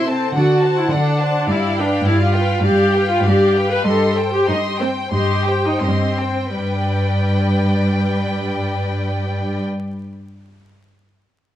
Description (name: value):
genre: quick classical-period movement for string orchestra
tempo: 81-106 BPM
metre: 4/4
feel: rubato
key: G major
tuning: A4 = 442 Hz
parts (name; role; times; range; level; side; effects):
- rich chamber violin section; melody; 0.0-9.6 s; F5 to C6; -26 LUFS; left 2 dB; none
- rich chamber violin section; second line; 0.0-9.6 s; G4 to F#5; -25 LUFS; left 2 dB; none
- rich chamber viola section; accompaniment; 0.0-9.6 s; G3 to B4; -19 LUFS; equal; none
- rich chamber cello section; bass; 0.0-9.6 s; G2 to D3; -20 LUFS; equal; none
room: moderate scoring stage reverb, RT60 1.6 s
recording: close, detailed microphones, vinyl crackle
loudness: -15 LUFS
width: side -12 dB against mid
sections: 0.0-6.5 A section; 6.5-9.3 B section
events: slowing down 0.3-6.5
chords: 0.3 D7; 1.5 G7; 3.9 Cm/G; 6.5 G